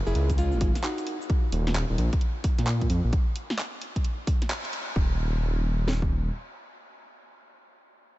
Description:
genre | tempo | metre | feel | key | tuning
UK garage, two-step garage | 131 BPM | 4/4 | swing 64% on 16ths | unclear | A4 = 440 Hz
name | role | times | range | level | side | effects
nylon-string guitar | melody | 0.1-1.2 s | Ab3 to Ab4 | -35 LUFS | equal | ping-pong delay
dark detuned saw bass | bass | 0.1-6.3 s | Eb1 to Bb2 | -25 LUFS | equal | tube saturation
egg shaker | percussion | 0.1-1.3 s | none | -55 LUFS | left 1 dB | none
garage drum kit | drums | 0.2-4.8 s | handclaps, hi-hat, snare drum | -35 LUFS | equal | overdrive
house drum kit | drums | 0.3-6.1 s | kick drum, snare drum | -25 LUFS | equal | overdrive
room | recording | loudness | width
digital ambience | nothing above 7.9 kHz | -24 LUFS | side -17 dB against mid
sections
0.0-5.0 A section; 5.0-8.2 B section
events
drop 0.0-5.0; band accent 4.5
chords
0.4 Ab5; 1.3 Eb5; 2.2 Bb5; 3.1 N.C.

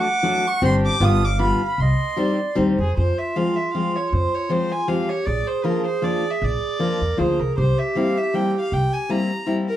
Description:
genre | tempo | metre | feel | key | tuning
musette waltz | 156 BPM | 3/4 | swing 54% on 8ths | F harmonic minor | A4 = 439 Hz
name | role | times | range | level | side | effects
warm violin | melody | 0.0-9.8 s | Ab4 to Eb6 | -26 LUFS | equal | none
dark clarinet | second line | 0.0-9.6 s | F4 to G5 | -25 LUFS | right 4 dB | none
fingerpicked steel-string acoustic guitar | accompaniment | 0.0-9.7 s | F3 to G4 | -22 LUFS | left 2 dB | none
upright bass | bass | 0.6-8.9 s | G1 to F2 | -21 LUFS | equal | none
room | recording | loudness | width
wet studio reverb, RT60 0.5 s | heard from further back in the room | -18 LUFS | side -12 dB against mid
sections
0.0-3.0 A section; 3.0-9.8 B section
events
none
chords
0.0 D; 0.6 Gsus4; 1.0 G7; 1.8 Cm; 3.0 Fm; 5.3 Bb; 7.6 C7

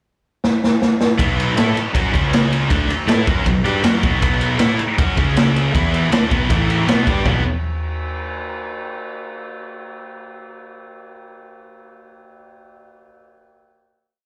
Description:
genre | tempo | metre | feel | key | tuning
hard rock | 158 BPM | 4/4 | straight | B dorian | A4 = 439 Hz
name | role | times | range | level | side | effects
raw garage drum kit | drums | 0.4-7.3 s | china cymbal, kick drum, ride cymbal, snare drum, toms | -21 LUFS | equal | none
heavy high-gain guitar | riff | 1.2-7.4 s | A2 to A4 | -29 LUFS | equal | none
high-gain distorted guitar | riff | 1.2-7.4 s | A2 to A4 | -24 LUFS | equal | distortion, slapback echo
overdriven semi-hollow guitar | riff | 1.2-7.4 s | A2 to A4 | -28 LUFS | equal | slapback echo
fuzz picked electric bass | bass | 1.2-7.4 s | A1 to A2 | -24 LUFS | equal | overdrive
room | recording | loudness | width
studio ambience | live gig heard through the venue's PA, club reverb | -18 LUFS | mono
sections
0.0-1.2 pickup bar; 1.2-7.3 riff; 7.3-8.8 final chord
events
drum fill 0.4-1.2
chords
0.0 N.C.; 1.2 B5; 2.1 C#5; 2.7 Bm; 5.2 C#5; 5.7 E5; 6.1 Bm; 6.5 A5; 6.9 Bm; 7.3 B5

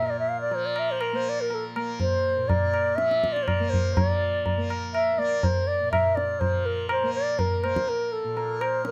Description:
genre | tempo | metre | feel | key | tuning
indian classical, Hindustani | 122 BPM | 4/4 | straight | Bb raga yaman | A4 = 441 Hz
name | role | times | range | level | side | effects
mellow bansuri | melody | 0.0-8.9 s | A4 to F5 | -27 LUFS | equal | none
tanpura | drone | 0.0-8.9 s | Bb2 to Bb3 | -36 LUFS | equal | none
tabla | percussion | 0.0-8.9 s | none | -30 LUFS | equal | none
room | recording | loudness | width
light reverb | none | -25 LUFS | mono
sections
0.0-4.0 A section; 4.0-8.9 B section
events
none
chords
none

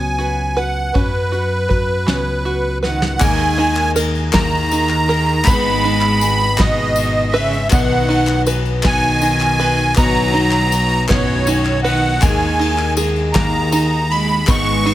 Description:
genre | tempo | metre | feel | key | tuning
indie folk with a building arrangement | 53 BPM (dotted quarters) | 6/8 | straight | unclear | A4 = 439 Hz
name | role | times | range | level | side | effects
musette accordion | melody | 0.0-14.9 s | B4 to C#6 | -18 LUFS | right 2 dB | digital delay
fingerpicked plugged-in steel-string acoustic guitar | accompaniment | 0.0-3.2 s | F#3 to B4 | -29 LUFS | left 3 dB | none
open-back banjo | arpeggios | 0.0-14.9 s | A#3 to B4 | -23 LUFS | right 3 dB | none
picked electric bass | bass | 0.0-14.9 s | G#1 to F#2 | -20 LUFS | equal | none
soft brush drum kit | drums | 0.2-14.9 s | crash cymbal, hi-hat, kick drum, ride cymbal, snare drum | -20 LUFS | equal | none
warm cello | second line | 2.8-14.9 s | F#2 to G#3 | -23 LUFS | right 3 dB | none
clear upright piano | accompaniment | 3.2-14.9 s | G#1 to D#5 | -28 LUFS | left 6 dB | none
picked plugged-in twelve-string acoustic guitar | accompaniment | 3.2-14.9 s | G#2 to B4 | -24 LUFS | left 6 dB | none
group handclap | percussion | 3.2-14.9 s | none | -27 LUFS | left 5 dB | none
tambourine | percussion | 3.2-14.7 s | none | -30 LUFS | left 10 dB | none
room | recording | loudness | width
light reverb, small room ambience | none | -14 LUFS | side -14 dB against mid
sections
0.0-3.2 A section; 3.2-14.9 B section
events
drum fill 2.8-3.2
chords
0.0 F#sus4; 3.2 D#sus4; 5.5 G#m; 7.7 B; 12.2 D#sus4

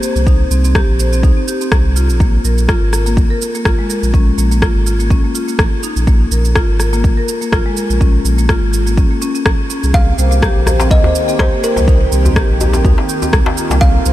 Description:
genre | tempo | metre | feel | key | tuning
afro house | 124 BPM | 4/4 | swing 55% on 16ths | unclear | A4 = 439 Hz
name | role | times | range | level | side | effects
marimba with medium mallets | arpeggios | 0.0-14.1 s | Ab3 to C5 | -19 LUFS | left 1 dB | sidechain pumping, low-pass filter, ping-pong delay
electronic shaker and rim click | drums | 0.0-14.1 s | none | -20 LUFS | equal | studio reverb
warm sub bass | bass | 0.2-14.1 s | Ab1 to C2 | -14 LUFS | equal | sidechain pumping
electronic kick drum | drums | 0.3-13.9 s | none | -13 LUFS | equal | studio reverb
kalimba | melody | 9.9-14.1 s | Bb4 to F5 | -20 LUFS | equal | ping-pong delay
warm analog pad | sustained chords | 9.9-14.1 s | Eb3 to Bb4 | -23 LUFS | equal | chorus, sidechain pumping
djembe | percussion | 10.7-13.8 s | none | -20 LUFS | left 2 dB | none
room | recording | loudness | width
light reverb, small room ambience | none | -11 LUFS | side -14 dB against mid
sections
0.0-14.1 A section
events
none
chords
0.0 C7(no3); 2.2 Bb7(no3); 9.9 Cm7

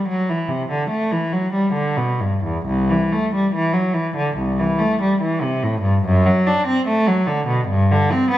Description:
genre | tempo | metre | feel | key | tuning
classical, baroque-style suite movement for unaccompanied cello | 72 BPM | 4/4 | rubato | unclear | A4 = 440 Hz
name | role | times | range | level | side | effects
rich cello | solo | 0.0-8.4 s | C2 to D4 | -17 LUFS | equal | none
room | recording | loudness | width
moderate recital hall reverb, RT60 1.4 s | none | -17 LUFS | side -13 dB against mid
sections
0.0-8.4 A section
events
none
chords
none

